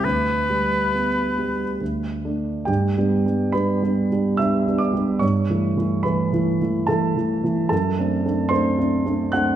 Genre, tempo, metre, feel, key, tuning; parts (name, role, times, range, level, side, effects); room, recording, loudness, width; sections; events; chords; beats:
classical, romantic duo for oboe and grand piano; 70 BPM; 3/4; uneven beats, rubato; G major; A4 = 445 Hz
warm oboe; melody; 0.0-1.8 s; B4; -22 LUFS; left 1 dB
dark concert grand piano; accompaniment; 0.0-9.6 s; D2 to F#6; -19 LUFS; right 2 dB
wet scoring stage reverb, RT60 1.6 s; minimal, uncompressed stereo recording; -19 LUFS; side -10 dB against mid
0.0-2.7 A section; 2.7-9.6 B section
0.0 G/D; 1.8 D5; 2.7 G; 5.2 A7/G; 7.7 D7/F#
| 0.04 0.93 1.80 | 2.68 3.54 4.39 | 5.22 6.05 6.89 | 7.72 8.53 9.33